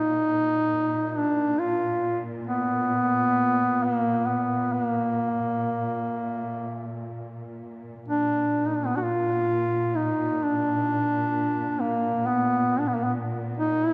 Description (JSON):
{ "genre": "caucasian folk, Caucasian lament", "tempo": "59-69 BPM", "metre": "3/4", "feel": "rubato", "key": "unclear", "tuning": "A4 = 440 Hz", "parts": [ { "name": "mellow duduk", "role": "melody", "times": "0.0-13.9 s", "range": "Bb3 to Gb4", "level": "-26 LUFS", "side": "equal", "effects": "tape echo" }, { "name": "dark studio cello section", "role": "drone", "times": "0.0-13.9 s", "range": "Bb2", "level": "-35 LUFS", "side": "equal", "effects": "none" } ], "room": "moderate church reverb, RT60 2.6 s", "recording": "none", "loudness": "-25 LUFS", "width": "mono", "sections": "0.0-8.1 A section; 8.1-13.9 B section", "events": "none", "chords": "none", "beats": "0.70 1.59 | 2.47 3.37 4.28 | 5.18 6.11 7.08 | 8.08 9.03 9.96 | 10.89 11.81 12.70 | 13.57" }